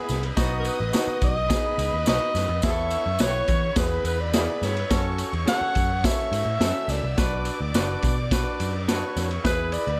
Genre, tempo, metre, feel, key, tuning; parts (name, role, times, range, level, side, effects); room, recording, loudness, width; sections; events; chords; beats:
uptempo 1960s-style soul; 106 BPM; 4/4; straight; A4 = 442 Hz
warm alto saxophone; melody; 0.0-10.0 s; Bb4 to F#5; -29 LUFS; equal
warm studio violin section; second line; 0.0-10.0 s; B4 to E6; -37 LUFS; equal; plate reverb
barky tine electric piano; accompaniment; 0.0-9.9 s; B3 to B4; -34 LUFS; equal; overdrive, plate reverb
vintage muted picked electric bass; bass; 0.1-10.0 s; F#1 to E3; -30 LUFS; equal
raw garage drum kit; drums; 0.1-10.0 s; kick drum, ride cymbal, snare drum; -28 LUFS; equal
tambourine; percussion; 0.1-9.9 s; -40 LUFS; equal
electric guitar through a small old amp; stabs; 0.9-9.0 s; C#4 to E5; -37 LUFS; equal
light reverb; -24 LUFS; mono
0.0-10.0 A section
0.4 B; 2.6 Esus4; 3.8 E; 4.9 F#m; 7.2 Bm; 9.4 E
| 0.37 0.94 1.50 2.07 | 2.64 3.21 3.77 4.34 | 4.91 5.47 6.04 6.61 | 7.18 7.75 8.31 8.88 | 9.45